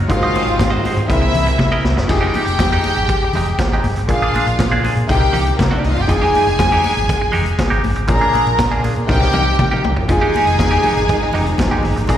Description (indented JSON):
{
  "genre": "disco",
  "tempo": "120 BPM",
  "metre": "4/4",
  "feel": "straight",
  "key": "F dorian",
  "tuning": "A4 = 440 Hz",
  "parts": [
    { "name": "clear grand piano", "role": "accompaniment", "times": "0.0-12.2 s", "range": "Bb2 to C5", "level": "-23 LUFS", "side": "left 3 dB", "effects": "slapback echo" },
    { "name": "clear studio string section", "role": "sustained chords", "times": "0.0-2.1, 10.1-12.2 s", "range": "C3 to F4", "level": "-23 LUFS", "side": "right 1 dB", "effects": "none" },
    { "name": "hollow-body short-scale fingered electric bass", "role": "bass", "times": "0.0-12.2 s", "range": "F1 to C3", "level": "-19 LUFS", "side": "equal", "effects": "none" },
    { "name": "warm symphonic violin section", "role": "second line", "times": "0.1-12.2 s", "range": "Bb3 to Bb5", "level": "-19 LUFS", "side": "left 1 dB", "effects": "slapback echo" },
    { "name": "clean electric guitar", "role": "accompaniment", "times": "0.1-12.1 s", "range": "Ab3 to Eb5", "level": "-23 LUFS", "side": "right 4 dB", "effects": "phaser, slapback echo" },
    { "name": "vintage drum kit", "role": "drums", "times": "0.1-12.2 s", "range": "crash cymbal, hi-hat, kick drum, snare drum, toms", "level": "-21 LUFS", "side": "equal", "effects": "none" },
    { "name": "congas", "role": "percussion", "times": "0.1-12.2 s", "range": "none", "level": "-27 LUFS", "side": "left 4 dB", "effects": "slapback echo" }
  ],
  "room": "light reverb, studio reverb",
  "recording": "live gig heard through the venue's PA, recital hall reverb",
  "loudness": "-13 LUFS",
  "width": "side -10 dB against mid",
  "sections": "0.0-2.1 A section; 2.1-12.2 A section",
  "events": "drum fill 1.6-2.1, 9.1-10.1",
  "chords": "0.1 Ab7; 1.1 C7alt; 2.1 Fm9; 4.1 Bb7; 5.1 Cm7; 6.1 Fm9; 8.1 Bb7; 9.1 Cm7; 10.1 Fm9",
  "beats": "| 0.10 0.59 1.09 1.60 | 2.10 2.60 3.10 3.60 | 4.09 4.59 5.09 5.59 | 6.09 6.59 7.09 7.59 | 8.09 8.59 9.09 9.59 | 10.09 10.59 11.09 11.59 | 12.09"
}